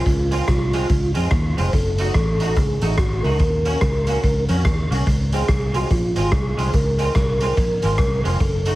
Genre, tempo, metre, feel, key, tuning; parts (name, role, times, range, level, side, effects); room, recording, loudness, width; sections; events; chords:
ska; 144 BPM; 4/4; swing 61% on 8ths; Db major; A4 = 440 Hz
mellow tonewheel organ; melody; 0.0-8.8 s; F4 to C5; -24 LUFS; equal; fast rotary speaker, dub echo
fingered electric bass; bass; 0.0-8.8 s; F1 to F2; -21 LUFS; equal
raw garage drum kit; drums; 0.1-8.7 s; hi-hat, kick drum, rim click; -21 LUFS; equal
electric guitar through a small old amp; accompaniment; 0.3-8.8 s; Ab3 to Gb4; -27 LUFS; right 2 dB; ensemble chorus
light reverb; heavily compressed radio sound, vinyl crackle; -17 LUFS; side -17 dB against mid
0.0-8.8 A section
0.0 Dbmaj7; 1.7 Gbm6; 3.4 Ebm7; 5.1 Dbmaj7